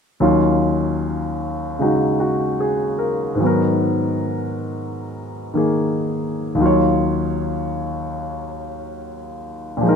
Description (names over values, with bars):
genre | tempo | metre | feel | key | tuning
jazz | 75 BPM | 4/4 | swing 66% on 8ths | Eb minor | A4 = 440 Hz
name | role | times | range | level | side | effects
warm grand piano | accompaniment | 0.2-10.0 s | Eb2 to Db5 | -18 LUFS | equal | none
room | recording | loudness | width
light reverb | close, detailed microphones | -18 LUFS | side -6 dB against mid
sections
0.2-10.0 A section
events
none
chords
0.2 Ebm9; 3.4 Abm9; 6.6 Ebm9